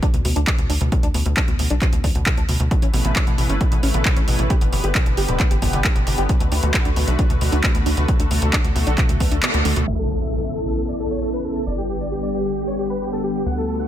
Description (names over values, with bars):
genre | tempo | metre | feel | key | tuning
uplifting trance | 134 BPM | 4/4 | straight | D major | A4 = 442 Hz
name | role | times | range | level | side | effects
tight sequenced synth | arpeggios | 0.0-9.8 s | B2 to G4 | -27 LUFS | equal | chorus, sidechain pumping, ping-pong delay
electronic kick drum | drums | 0.0-9.3 s | none | -19 LUFS | equal | none
punchy analog drum machine | drums | 0.0-10.0 s | crash cymbal, handclaps, hi-hat | -24 LUFS | equal | none
tight sequencer bass | bass | 0.1-13.9 s | D1 to D2 | -22 LUFS | equal | sidechain pumping
lush unison pad | sustained chords | 2.7-13.8 s | C#3 to B4 | -25 LUFS | left 1 dB | chorus, phaser, sidechain pumping
dense compressed supersaw | melody | 9.9-13.9 s | G4 to F#5 | -26 LUFS | equal | sidechain pumping, low-pass filter, ping-pong delay
impact | sound effects | 9.9-11.7 s | none | -27 LUFS | equal | none
room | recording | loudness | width
light reverb, digital ambience | low-pass filter | -17 LUFS | side -11 dB against mid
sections
0.0-9.9 A section; 9.9-13.9 B section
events
kick drops out 9.4-9.9; band accent 9.4; impact 9.9-11.7; filter sweep on supersaw synth 9.9-13.9; filter sweep on analog synth pad 9.9-13.9; filter sweep 9.9-13.9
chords
0.0 Bm; 2.7 Aadd9; 4.5 G; 6.3 D6; 9.9 Aadd9; 11.7 G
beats
0.03 0.47 | 0.92 1.37 1.82 2.26 | 2.71 3.16 3.61 4.05 | 4.50 4.95 5.40 5.85 | 6.29 6.74 7.19 7.64 | 8.09 8.53 8.98 9.43 | 9.88 10.32 10.77 11.22 | 11.67 12.12 12.56 13.01 | 13.46